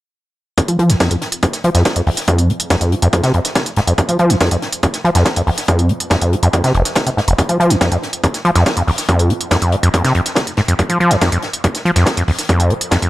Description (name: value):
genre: driving peak-time techno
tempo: 141 BPM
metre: 4/4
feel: straight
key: F minor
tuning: A4 = 441 Hz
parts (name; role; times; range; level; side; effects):
- overdriven acid bass; riff; 0.6-13.1 s; F1 to F3; -14 LUFS; equal; sidechain pumping, tape echo
- compact cocktail drum kit; drums; 0.6-13.0 s; hi-hat, snare drum; -24 LUFS; left 1 dB; sidechain pumping on hats, high-pass filter on hats, high-pass filter on snare, high-pass filter on room
- electronic hi-hat; drums; 0.6-13.1 s; none; -21 LUFS; right 2 dB; sidechain pumping on hats
- electronic kick drum; drums; 0.6-13.0 s; none; -18 LUFS; equal; high-pass filter on kick, high-pass filter on room
room: light reverb, small room ambience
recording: dry, gritty hardware recording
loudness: -13 LUFS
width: side -17 dB against mid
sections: 0.6-13.1 A section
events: filter sweep on acid bass 0.6-13.1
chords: none